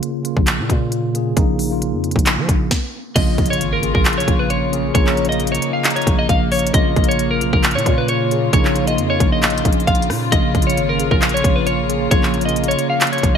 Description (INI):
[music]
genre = hip hop, trap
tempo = 134 BPM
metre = 4/4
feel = half-time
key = Bb minor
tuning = A4 = 440 Hz
[part]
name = mellow tine electric piano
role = accompaniment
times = 0.0-13.4 s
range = Db3 to Ab4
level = -21 LUFS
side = equal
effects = medium stereo tremolo
[part]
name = trap drum kit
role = drums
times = 0.0-13.3 s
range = crash cymbal, handclaps, hi-hat, kick drum, rim click, snare drum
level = -18 LUFS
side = equal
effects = gated reverb
[part]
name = growling 808-style bass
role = bass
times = 0.4-13.4 s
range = Ab1 to F3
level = -22 LUFS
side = equal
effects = none
[part]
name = clean electric guitar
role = melody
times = 3.2-13.4 s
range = Bb4 to F5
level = -20 LUFS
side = left 1 dB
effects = analog chorus
[part]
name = warm chamber string section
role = sustained chords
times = 3.2-13.4 s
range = Db3 to F4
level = -25 LUFS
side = left 2 dB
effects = none
[part]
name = impact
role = sound effects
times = 3.2-4.9 s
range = none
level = -29 LUFS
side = equal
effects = none
[sound]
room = light reverb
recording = bright 1980s-style digital production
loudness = -15 LUFS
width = side -7 dB against mid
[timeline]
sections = 0.0-3.2 A section; 3.2-13.4 B section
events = break 0.0-3.2; stop 2.7-3.2; impact 3.2-4.9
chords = 0.0 Bbm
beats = 0.02 0.47 0.92 | 1.37 1.81 2.26 2.71 | 3.16 3.61 4.05 4.50 | 4.95 5.40 5.84 6.29 | 6.74 7.19 7.64 8.08 | 8.53 8.98 9.43 9.87 | 10.32 10.77 11.22 11.67 | 12.11 12.56 13.01